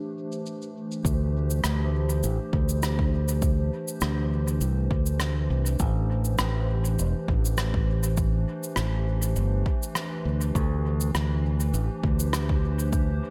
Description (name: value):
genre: ambient dub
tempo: 101 BPM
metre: 4/4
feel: swing 54% on 16ths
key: unclear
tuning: A4 = 440 Hz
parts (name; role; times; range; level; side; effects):
- warbly tape-like pad; sustained chords; 0.0-13.3 s; E3 to C5; -35 LUFS; equal; chorus, built-in reverb
- cabasa and rim click; drums; 0.3-13.1 s; none; -35 LUFS; equal; low-pass filter on snare, low-pass filter on perc, low-pass filter on room, dub echo
- fingered electric bass; bass; 1.0-13.2 s; E1 to D2; -27 LUFS; equal; none
- electronic kick drum; drums; 1.0-13.1 s; none; -29 LUFS; equal; overdrive
room: light reverb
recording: none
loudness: -26 LUFS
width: mono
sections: 0.0-1.0 A section; 1.0-13.3 B section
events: none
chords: 0.0 Am7; 1.0 Dsus2; 5.8 Am7; 10.6 Dsus2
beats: 0.45 | 1.04 1.64 2.23 2.83 | 3.42 4.02 4.61 5.20 | 5.80 6.39 6.99 7.58 | 8.17 8.77 9.36 9.96 | 10.55 11.14 11.74 12.33 | 12.93